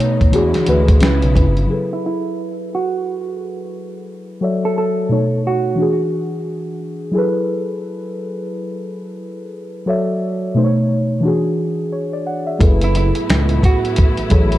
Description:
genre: lo-fi hip hop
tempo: 88 BPM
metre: 4/4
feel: swing 60% on 16ths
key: F# minor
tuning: A4 = 441 Hz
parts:
  - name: muted felt-like synth keys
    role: accompaniment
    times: 0.0-14.6 s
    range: B2 to F#5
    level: -19 LUFS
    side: left 1 dB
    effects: chorus, low-pass filter
  - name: warm studio string section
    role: sustained chords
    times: 0.0-1.7, 12.6-14.6 s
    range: A2 to E4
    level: -26 LUFS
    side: equal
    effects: low-pass filter
  - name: dusty soul sampler-style drum kit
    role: drums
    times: 0.0-1.7, 12.6-14.6 s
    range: hi-hat, kick drum, snare drum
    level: -15 LUFS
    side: equal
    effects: none
  - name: smooth synth bass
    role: bass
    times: 0.3-1.7, 12.6-14.6 s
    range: F#1 to E2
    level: -17 LUFS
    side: equal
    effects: none
  - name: vintage hollow-body jazz guitar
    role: melody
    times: 1.9-7.1, 12.8-14.6 s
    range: E4 to A4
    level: -22 LUFS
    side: right 5 dB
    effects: low-pass filter, analog delay
room: light reverb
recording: dark, warm production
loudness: -15 LUFS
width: side -14 dB against mid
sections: 0.0-1.7 A section; 1.7-12.6 B section; 12.6-14.6 A section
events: none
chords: 0.3 E9; 1.0 C#m7; 1.7 F#m11; 4.4 Dmaj9/F#; 5.1 B9; 5.8 E9; 7.2 F#m11; 9.9 Dmaj9/F#; 10.6 B9; 11.2 E9; 12.6 F#m11

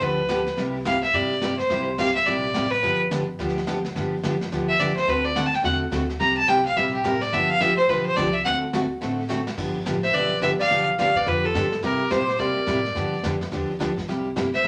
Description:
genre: country, western swing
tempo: 213 BPM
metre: 4/4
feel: swing 61% on 8ths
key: G mixolydian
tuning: A4 = 440 Hz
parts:
  - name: clear fiddle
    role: melody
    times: 0.0-14.7 s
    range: G4 to Bb5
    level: -24 LUFS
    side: equal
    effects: none
  - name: picked steel-string acoustic guitar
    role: accompaniment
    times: 0.0-14.7 s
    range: C3 to A4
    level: -28 LUFS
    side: equal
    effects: none
  - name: upright bass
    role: bass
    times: 0.0-14.7 s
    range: G1 to C3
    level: -37 LUFS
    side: equal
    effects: none
  - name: vintage brush drum kit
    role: drums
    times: 0.0-14.7 s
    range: brushed snare drum, crash cymbal, hi-hat, kick drum, snare drum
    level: -36 LUFS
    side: equal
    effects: none
  - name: mellow clarinet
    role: second line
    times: 10.0-14.7 s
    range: F4 to D5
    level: -32 LUFS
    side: equal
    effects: none
room: wet studio reverb, RT60 0.6 s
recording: none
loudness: -23 LUFS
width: mono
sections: 0.0-9.6 A section; 9.6-14.7 B section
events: fiddle solo 0.0-9.6; drum fill 9.3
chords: 0.0 G7; 0.6 C7; 2.8 G7; 5.1 D7; 6.2 C7; 7.3 G7; 8.4 D7; 9.6 G7; 11.8 C7; 13.0 G7; 14.1 C7

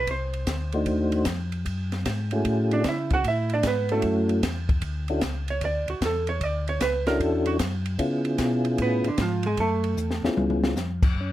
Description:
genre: soul jazz organ trio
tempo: 152 BPM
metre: 4/4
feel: swing 66% on 8ths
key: F# minor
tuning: A4 = 444 Hz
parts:
  - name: archtop guitar, miked and amplified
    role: accompaniment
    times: 0.0-10.3 s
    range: D3 to F#5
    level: -26 LUFS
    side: right 3 dB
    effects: none
  - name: mellow tonewheel organ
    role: bass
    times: 0.0-11.3 s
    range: C2 to C#3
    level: -28 LUFS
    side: left 1 dB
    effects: slow rotary speaker
  - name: compact cocktail drum kit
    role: drums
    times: 0.1-11.3 s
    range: crash cymbal, hi-hat, kick drum, ride cymbal, snare drum, toms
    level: -28 LUFS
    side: left 1 dB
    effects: none
  - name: percussive tonewheel organ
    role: melody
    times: 0.7-11.3 s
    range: A3 to C5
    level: -25 LUFS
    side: left 1 dB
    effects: slow rotary speaker, chorus vibrato
room: light reverb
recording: none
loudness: -23 LUFS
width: side -14 dB against mid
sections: 0.0-11.2 A section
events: hollow-body jazz guitar solo 0.0-11.2; drum fill 10.0-10.8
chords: 0.1 Cdim7; 1.7 F#m7; 4.8 Dmaj7; 8.0 C#7#9; 9.6 F#m7; 10.4 C#7#9

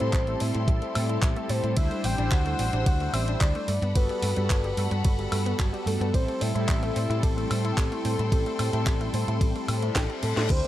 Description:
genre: nu-disco, nu disco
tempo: 110 BPM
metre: 4/4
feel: straight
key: A dorian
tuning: A4 = 440 Hz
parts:
  - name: soft octave-layered synth lead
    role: melody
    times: 0.0-10.7 s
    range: A4 to G5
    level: -32 LUFS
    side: left 1 dB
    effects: chorus, cassette tape, analog delay
  - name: mellow synth brass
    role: accompaniment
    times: 0.0-10.7 s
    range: G3 to C5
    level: -31 LUFS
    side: equal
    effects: chorus, phaser
  - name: clear studio string section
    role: sustained chords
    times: 0.0-10.7 s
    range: G4 to E6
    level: -38 LUFS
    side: left 3 dB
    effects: vintage 12-bit sampler grit, sidechain pumping
  - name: analog pluck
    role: arpeggios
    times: 0.0-10.7 s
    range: F#3 to C5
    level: -37 LUFS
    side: right 1 dB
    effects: chorus, sidechain pumping, analog delay
  - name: hollow-body short-scale fingered electric bass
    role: bass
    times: 0.0-10.6 s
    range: G1 to A2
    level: -28 LUFS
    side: equal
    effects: none
  - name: house drum kit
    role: drums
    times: 0.0-10.7 s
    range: crash cymbal, handclaps, hi-hat, ride cymbal, snare drum, woodblock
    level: -34 LUFS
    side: equal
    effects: none
  - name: electronic kick drum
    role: drums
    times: 0.1-10.6 s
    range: none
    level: -24 LUFS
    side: equal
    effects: none
  - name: reverse cymbal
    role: sound effects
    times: 9.7-10.5 s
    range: none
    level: -37 LUFS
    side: left 7 dB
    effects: none
room: digital ambience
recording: none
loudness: -23 LUFS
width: side -13 dB against mid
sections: 0.0-10.7 A section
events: reverse cymbal 9.7-10.5; drum fill 10.0-10.5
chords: 0.0 Am7; 1.8 D9sus4; 3.7 Gmaj9; 6.1 Am7

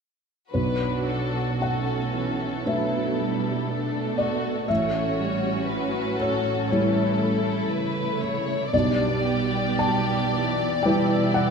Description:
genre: cinematic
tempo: 59 BPM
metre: 4/4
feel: rubato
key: B minor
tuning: A4 = 441 Hz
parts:
  - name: warm symphonic violin section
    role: second line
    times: 0.5-11.5 s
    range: D4 to D5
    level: -28 LUFS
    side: left 4 dB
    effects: none
  - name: dark studio viola section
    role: accompaniment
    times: 0.5-11.5 s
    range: E3 to E4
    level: -29 LUFS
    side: right 3 dB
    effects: none
  - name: felt-muted upright piano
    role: accompaniment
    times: 0.5-11.5 s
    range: A1 to A5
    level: -25 LUFS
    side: left 1 dB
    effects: none
  - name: dark symphonic cello section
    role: bass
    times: 0.5-11.5 s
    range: A2 to C#3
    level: -31 LUFS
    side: right 6 dB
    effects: none
room: moderate scoring stage reverb, RT60 2.1 s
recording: minimal, uncompressed stereo recording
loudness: -22 LUFS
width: side -5 dB against mid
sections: 0.5-11.5 A section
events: none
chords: 0.5 Bm7; 4.7 A7; 8.7 G6/B

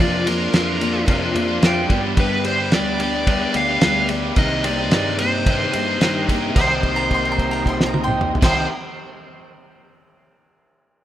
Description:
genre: folk rock and heartland rock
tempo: 110 BPM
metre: 4/4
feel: straight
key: C minor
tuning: A4 = 439 Hz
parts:
  - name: dark smooth lead guitar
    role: melody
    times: 0.0-8.7 s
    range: Bb4 to F5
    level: -23 LUFS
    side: right 1 dB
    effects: overdrive, tape echo
  - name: picked steel-string acoustic guitar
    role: accompaniment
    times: 0.0-8.7 s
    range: F2 to G4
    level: -25 LUFS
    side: left 3 dB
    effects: none
  - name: tonewheel organ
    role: sustained chords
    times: 0.0-8.7 s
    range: C4 to C6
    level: -30 LUFS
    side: right 1 dB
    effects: chorus vibrato, slow rotary speaker
  - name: overdriven electric guitar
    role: riff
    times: 0.0-8.7 s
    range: F2 to G4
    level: -25 LUFS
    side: right 1 dB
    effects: none
  - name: fingered electric bass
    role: bass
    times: 0.0-8.7 s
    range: C2 to G2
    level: -28 LUFS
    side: equal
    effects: none
  - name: cloth-damped thuddy drum kit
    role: drums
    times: 0.3-8.6 s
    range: crash cymbal, kick drum, ride cymbal, snare drum, toms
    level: -21 LUFS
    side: equal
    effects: none
  - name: mandolin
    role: second line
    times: 1.1-2.0, 7.0-8.7 s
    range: D5 to C6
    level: -27 LUFS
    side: right 2 dB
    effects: none
room: light reverb, small room ambience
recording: rough home demo mix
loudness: -16 LUFS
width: side -12 dB against mid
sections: 0.0-6.6 A section; 6.6-8.8 B section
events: held note 6.6-8.4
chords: 0.0 Bbadd9/F; 1.9 G; 4.4 Cm7

